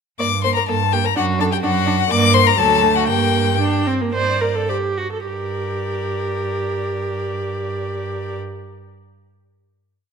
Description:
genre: quick classical-period movement for string quartet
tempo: 99-128 BPM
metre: 2/4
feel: rubato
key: G minor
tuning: A4 = 442 Hz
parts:
  - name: clear violin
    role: melody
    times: 0.2-8.4 s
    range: D5 to D6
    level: -21 LUFS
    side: left 11 dB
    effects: none
  - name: clear violin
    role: second line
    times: 0.2-8.4 s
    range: F#4 to D5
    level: -25 LUFS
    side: left 4 dB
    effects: none
  - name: rich viola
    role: accompaniment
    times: 0.2-8.4 s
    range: F#3 to C5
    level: -22 LUFS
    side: right 3 dB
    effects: none
  - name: rich cello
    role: bass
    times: 0.2-8.4 s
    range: D2 to G2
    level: -23 LUFS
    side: right 5 dB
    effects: none
room: moderate concert hall reverb, RT60 1.8 s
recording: none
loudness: -17 LUFS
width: side -6 dB against mid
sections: 0.2-4.1 A section; 4.1-5.3 coda; 5.3-7.6 final chord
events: slowing down 2.6-5.3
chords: 0.2 Gm; 1.2 D/F#; 2.1 Gm; 2.6 D; 3.1 Gm; 4.1 G5; 4.7 Gsus2; 5.3 Gm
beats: | 0.19 0.69 | 1.16 1.64 | 2.11 2.59 | 3.09 3.61 | 4.14 4.68 | 5.27 5.85 | 6.44 7.02

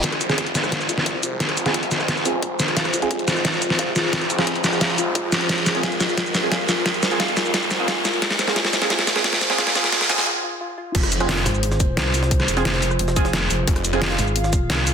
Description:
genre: dark technical drum and bass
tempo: 176 BPM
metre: 4/4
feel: straight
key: F minor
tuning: A4 = 439 Hz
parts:
  - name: dark analog pad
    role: sustained chords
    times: 0.0-14.9 s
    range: F4 to F5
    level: -29 LUFS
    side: equal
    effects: chorus, sidechain pumping
  - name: soft round pluck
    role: arpeggios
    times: 0.0-10.9 s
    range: F4 to F5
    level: -31 LUFS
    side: left 3 dB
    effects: chorus, sidechain pumping, dub echo
  - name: snarling distorted saw bass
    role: bass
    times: 0.0-11.4, 13.7-14.2 s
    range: F1 to C2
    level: -28 LUFS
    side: equal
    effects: distortion, tube saturation, sidechain pumping, high-pass filter
  - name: dubstep drum kit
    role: drums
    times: 0.0-14.9 s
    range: crash cymbal, hi-hat, rim click, shaker, snare drum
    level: -20 LUFS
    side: equal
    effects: none
  - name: electronic kick drum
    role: drums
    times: 0.0-14.6 s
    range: none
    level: -24 LUFS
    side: equal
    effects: high-pass filter on kick, high-pass filter on room
  - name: reverse cymbal, riser and impact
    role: sound effects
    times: 0.0-12.3 s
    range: none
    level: -28 LUFS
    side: right 1 dB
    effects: none
  - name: orchestra-hit-like synth stab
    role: stabs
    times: 0.3-14.0 s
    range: C4 to Ab4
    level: -27 LUFS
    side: right 4 dB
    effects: built-in reverb, dub echo
  - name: jungle sampler-style drum kit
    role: drums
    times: 10.9-14.9 s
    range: hi-hat, snare drum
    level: -32 LUFS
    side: equal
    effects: high-pass filter on hats, high-pass filter on snare
  - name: pulsing pluck wobble bass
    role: bass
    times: 11.5-14.9 s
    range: F1 to C2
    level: -22 LUFS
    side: equal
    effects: chorus
room: light reverb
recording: dense, heavily limited modern master, high-pass filter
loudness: -18 LUFS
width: side -7 dB against mid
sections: 0.0-10.9 A section; 10.9-14.9 B section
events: build-up 0.0-10.9; drum fill 0.0-10.3; riser 0.0-10.3; filter sweep on synth pluck 0.0-10.9; filter sweep on synth stab 0.0-10.9; break 10.3-10.9; drop 10.9-14.9; impact 10.9-12.3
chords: 0.0 Fm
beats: | 0.04 0.38 0.72 1.06 | 1.40 1.74 2.08 2.42 | 2.77 3.11 3.45 3.79 | 4.13 4.47 4.81 5.15 | 5.49 5.83 6.17 6.52 | 6.86 7.20 7.54 7.88 | 8.22 8.56 8.90 9.24 | 9.58 9.93 10.27 10.61 | 10.95 11.29 11.63 11.97 | 12.31 12.65 12.99 13.33 | 13.68 14.02 14.36 14.70

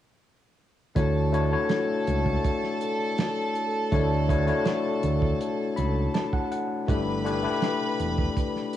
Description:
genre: lush 1970s-style soul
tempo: 81 BPM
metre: 4/4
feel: straight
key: D major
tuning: A4 = 438 Hz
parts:
  - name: rich chamber string section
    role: second line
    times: 1.0-8.8 s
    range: A4 to B5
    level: -32 LUFS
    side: right 2 dB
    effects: none
  - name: overdriven tine electric piano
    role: accompaniment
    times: 1.0-8.8 s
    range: A3 to B5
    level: -26 LUFS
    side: left 4 dB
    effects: none
  - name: fingered electric bass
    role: bass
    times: 1.0-8.3 s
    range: E1 to D2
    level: -26 LUFS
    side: right 2 dB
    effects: tube saturation
  - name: warm soul drum kit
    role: drums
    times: 1.0-8.8 s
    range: hi-hat, kick drum, snare drum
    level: -28 LUFS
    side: right 2 dB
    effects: cassette tape
room: light reverb, studio ambience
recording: home recording on cassette, small room ambience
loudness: -23 LUFS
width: side -12 dB against mid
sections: 1.0-8.8 A section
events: tine electric piano fill 5.4-6.9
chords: 1.0 Dmaj7; 6.9 G6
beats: | 0.96 1.70 2.44 3.18 | 3.92 4.66 5.40 6.14 | 6.88 7.62 8.36

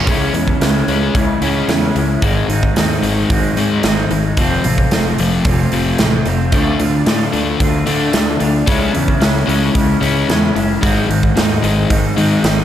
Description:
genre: quiet-loud alternative rock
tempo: 112 BPM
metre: 4/4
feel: straight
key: unclear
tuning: A4 = 440 Hz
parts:
  - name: crunchy overdriven guitar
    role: riff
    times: 0.0-12.6 s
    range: F2 to D4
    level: -17 LUFS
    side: left 5 dB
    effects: none
  - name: growling fingered electric bass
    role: bass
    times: 0.0-12.6 s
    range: F1 to D3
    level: -20 LUFS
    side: equal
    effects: overdrive
  - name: electric guitar through a small old amp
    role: arpeggios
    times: 0.1-12.6 s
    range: Ab2 to F4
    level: -19 LUFS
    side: right 2 dB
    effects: lush chorus, analog delay, slapback echo
  - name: big rock drum kit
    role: drums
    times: 0.1-12.6 s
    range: hi-hat, kick drum, snare drum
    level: -18 LUFS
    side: right 1 dB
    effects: none
room: moderate lush hall reverb, RT60 2.5 s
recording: big arena sound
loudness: -12 LUFS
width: side -11 dB against mid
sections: 0.1-12.6 A section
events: none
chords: 0.1 Dbm; 2.2 Ab; 4.4 F; 6.5 Dm; 8.7 Dbm; 10.8 Ab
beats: | 0.07 0.61 1.15 1.68 | 2.22 2.76 3.30 3.83 | 4.37 4.91 5.45 5.99 | 6.52 7.06 7.60 8.14 | 8.67 9.21 9.75 10.29 | 10.82 11.36 11.90 12.44

